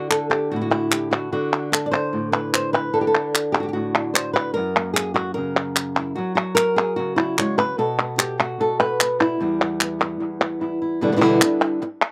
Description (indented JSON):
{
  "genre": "flamenco",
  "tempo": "149 BPM",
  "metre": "4/4",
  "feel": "straight",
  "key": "unclear",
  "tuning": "A4 = 439 Hz",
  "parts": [
    { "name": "flamenco guitar", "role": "melody", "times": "0.0-11.9 s", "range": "E2 to D5", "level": "-23 LUFS", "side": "equal", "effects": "none" },
    { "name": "palmas hand claps", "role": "percussion", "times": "0.1-12.1 s", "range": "none", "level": "-22 LUFS", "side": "equal", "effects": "none" }
  ],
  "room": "little or no reverb",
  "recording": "recorded outdoors, with no room sound",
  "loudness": "-22 LUFS",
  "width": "mono",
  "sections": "0.0-11.0 A section; 11.0-12.1 B section",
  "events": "none",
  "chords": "0.0 D; 4.6 F#; 7.8 N.C.; 9.4 Em; 11.0 Em7",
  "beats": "0.12 0.52 0.93 | 1.33 1.73 2.14 2.54 | 2.95 3.35 3.75 4.16 | 4.56 4.96 5.37 5.77 | 6.18 6.58 6.98 7.39 | 7.79 8.19 8.60 9.00 | 9.40 9.80 10.21 10.61 | 11.01 11.41 11.82"
}